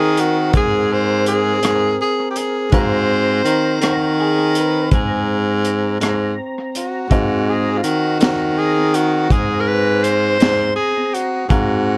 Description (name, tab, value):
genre	slow blues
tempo	55 BPM (dotted quarters)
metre	12/8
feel	straight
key	Ab mixolydian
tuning	A4 = 440 Hz
part	clear tenor saxophone	melody	0.0-12.0 s	F4 to C5	-22 LUFS	equal	analog delay
part	warm upright piano	accompaniment	0.0-12.0 s	C4 to Bb5	-29 LUFS	equal	none
part	mellow tonewheel organ	sustained chords	0.0-12.0 s	C4 to Bb5	-29 LUFS	equal	slow rotary speaker, chorus vibrato
part	clear baritone saxophone	bass	0.0-12.0 s	Ab2 to Eb3	-20 LUFS	equal	none
part	crunchy breakbeat drum kit	drums	0.2-11.7 s	hi-hat, kick drum, rim click, snare drum	-21 LUFS	equal	none
part	electric guitar through a small old amp	second line	3.8-5.3 s	Gb4 to Cb5	-27 LUFS	equal	analog chorus
room	light reverb, small room reverb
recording	echo-heavy mix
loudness	-17 LUFS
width	mono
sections	0.0-12.0 A section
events	none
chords	0.0 Ab13